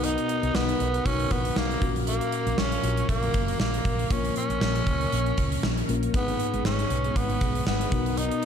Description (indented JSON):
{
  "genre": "1980s-style pop",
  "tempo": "118 BPM",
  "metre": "4/4",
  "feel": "swing 55% on 16ths",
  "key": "unclear",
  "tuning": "A4 = 441 Hz",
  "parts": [
    { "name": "raspy tenor saxophone", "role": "melody", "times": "0.0-8.5 s", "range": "A#3 to D#4", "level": "-29 LUFS", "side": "right 2 dB", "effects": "ping-pong delay" },
    { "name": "mellow tine electric piano", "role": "accompaniment", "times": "0.0-8.5 s", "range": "G#2 to B4", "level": "-30 LUFS", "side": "left 6 dB", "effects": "lush chorus" },
    { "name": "string machine, violins", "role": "sustained chords", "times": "0.0-8.5 s", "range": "E#3 to E#5", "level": "-34 LUFS", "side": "equal", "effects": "ensemble chorus" },
    { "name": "woody fretless electric bass", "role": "bass", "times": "0.0-8.3 s", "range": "F#1 to C#2", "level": "-29 LUFS", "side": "equal", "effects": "none" },
    { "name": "gated 80s drum kit", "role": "drums", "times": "0.0-8.5 s", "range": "hi-hat, kick drum, snare drum", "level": "-29 LUFS", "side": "equal", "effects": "none" }
  ],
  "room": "moderate lush hall reverb, RT60 1.8 s, studio ambience",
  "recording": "dark, warm production",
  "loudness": "-23 LUFS",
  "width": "side -8 dB against mid",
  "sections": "0.0-8.5 A section",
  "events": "none",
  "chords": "0.0 Bmaj7; 1.8 F#maj7/A#; 4.1 A#m; 6.1 G#m; 7.9 Bmaj7",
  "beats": "| 0.04 0.55 1.05 1.56 | 2.07 2.58 3.09 3.60 | 4.11 4.62 5.12 5.63 | 6.14 6.65 7.16 7.67 | 8.17"
}